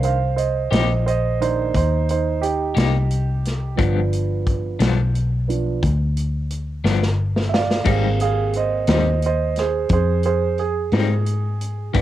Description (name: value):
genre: slow blues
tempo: 59 BPM (dotted quarters)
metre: 12/8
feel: straight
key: unclear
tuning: A4 = 441 Hz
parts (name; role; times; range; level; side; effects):
- warm concert grand piano; accompaniment; 0.0-12.0 s; Eb3 to F5; -22 LUFS; right 7 dB; cassette tape
- vintage muted fingered electric bass; bass; 0.0-12.0 s; G1 to Ab2; -21 LUFS; left 1 dB; none
- natural country drum kit; drums; 0.0-12.0 s; crash cymbal, hi-hat, kick drum, snare drum; -23 LUFS; left 1 dB; none
- electric guitar at the edge of break-up; accompaniment; 0.7-12.0 s; G2 to G4; -25 LUFS; left 9 dB; tremolo, cassette tape
room: small room ambience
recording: home recording on cassette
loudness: -18 LUFS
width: side -13 dB against mid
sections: 0.0-12.0 A section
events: grand piano solo 0.0-12.0; drum fill 6.8-7.9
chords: 0.0 Cm7; 3.8 G7; 7.9 Abmaj7